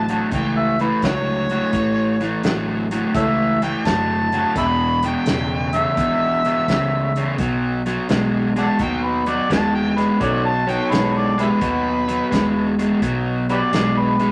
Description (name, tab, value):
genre	electric blues shuffle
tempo	85 BPM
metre	4/4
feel	swing 67% on 8ths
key	unclear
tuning	A4 = 440 Hz
part	overdriven harmonica	second line	0.0-14.3 s	E4 to B5	-24 LUFS	equal	none
part	crunchy overdriven guitar	riff	0.0-14.3 s	E2 to G#3	-22 LUFS	equal	none
part	vintage muted fingered electric bass	bass	0.0-14.3 s	E1 to D#2	-30 LUFS	equal	none
part	natural country drum kit	drums	0.1-14.3 s	hi-hat, kick drum, snare drum	-27 LUFS	equal	none
part	warm horn section	stabs	10.2-11.5 s	C#4 to A5	-27 LUFS	equal	none
room	wet club reverb, RT60 0.5 s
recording	none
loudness	-20 LUFS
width	mono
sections	0.0-14.3 A section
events	harmonica solo 0.0-14.3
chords	0.0 A; 4.6 E; 7.4 B9